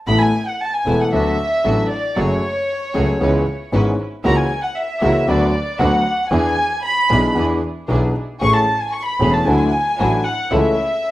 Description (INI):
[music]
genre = tango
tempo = 115 BPM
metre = 4/4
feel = rubato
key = A major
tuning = A4 = 440 Hz
[part]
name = warm chamber violin section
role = second line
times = 0.1-11.1 s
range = C#5 to C#6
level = -20 LUFS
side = equal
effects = plate reverb
[part]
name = warm concert grand piano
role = accompaniment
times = 0.1-10.7 s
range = E1 to A4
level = -19 LUFS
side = left 1 dB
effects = none
[part]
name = rich chamber string section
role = stabs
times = 0.1-10.7 s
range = F#3 to B4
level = -28 LUFS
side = right 2 dB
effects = plate reverb, tape echo
[part]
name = clear double bass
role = bass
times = 0.1-10.7 s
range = E1 to E2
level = -21 LUFS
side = right 1 dB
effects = none
[sound]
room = moderate studio reverb, RT60 0.6 s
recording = rough home demo mix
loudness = -15 LUFS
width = side -16 dB against mid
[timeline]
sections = 0.1-11.1 A section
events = violin section solo 0.1-11.1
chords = 0.1 Asus2; 1.1 D6; 2.2 F#madd9; 3.2 C#m7; 4.2 F#7/C#; 5.3 Bm/D; 6.3 E7; 8.4 Amaj7; 9.5 Dadd9; 10.5 A/C#